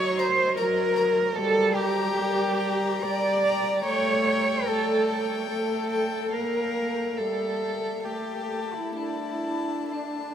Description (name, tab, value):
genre	classical, slow romantic movement for string quartet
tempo	63-77 BPM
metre	3/4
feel	rubato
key	unclear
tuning	A4 = 442 Hz
part	dark violin	second line	0.0-10.3 s	D4 to D5	-28 LUFS	left 4 dB	none
part	dark viola	accompaniment	0.0-10.3 s	Gb3 to D4	-30 LUFS	right 1 dB	none
part	dark cello	bass	0.0-10.3 s	D4 to D5	-28 LUFS	right 5 dB	none
part	rich violin	melody	0.2-10.3 s	E5 to Bb5	-34 LUFS	left 6 dB	none
room	wet huge ambient reverb, RT60 8.2 s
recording	in a vast, echoing space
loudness	-23 LUFS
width	side -9 dB against mid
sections	0.0-10.3 A section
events	none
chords	0.0 Ebm/Gb (rootless); 1.4 Gm; 3.9 A7; 6.3 Bb5; 7.2 Emadd11/G; 8.1 A5; 9.0 D5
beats	0.58 | 1.36 2.15 3.02 | 3.85 4.67 5.50 | 6.33 7.18 8.05 | 8.97 9.93